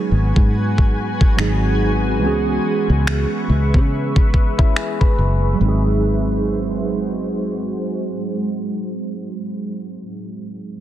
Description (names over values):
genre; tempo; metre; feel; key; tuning
contemporary R&B; 71 BPM; 4/4; swing 58% on 16ths; unclear; A4 = 440 Hz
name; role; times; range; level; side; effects
mellow tine electric piano; accompaniment; 0.0-10.8 s; E3 to G#4; -22 LUFS; right 3 dB; ensemble chorus, low-pass filter
granular cloud pad; sustained chords; 0.0-9.7 s; G#3 to C#6; -26 LUFS; left 1 dB; built-in reverb, low-pass filter
fingered electric bass; bass; 0.1-10.0 s; F#1 to C#3; -19 LUFS; equal; none
smooth R&B drum kit; drums; 0.4-5.2 s; finger snaps, kick drum; -16 LUFS; equal; soft clipping on snare
direct-recorded clean electric guitar; arpeggios; 4.6-5.6 s; C#4 to B4; -26 LUFS; left 8 dB; lush chorus, low-pass filter, tape echo
room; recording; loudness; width
little or no reverb; dense, heavily limited modern master; -16 LUFS; side -12 dB against mid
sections
0.0-5.6 A section; 5.6-9.0 B section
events
filter sweep 0.0-5.6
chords
0.0 G#m7; 1.4 G#7; 2.2 C#m7; 5.6 G#7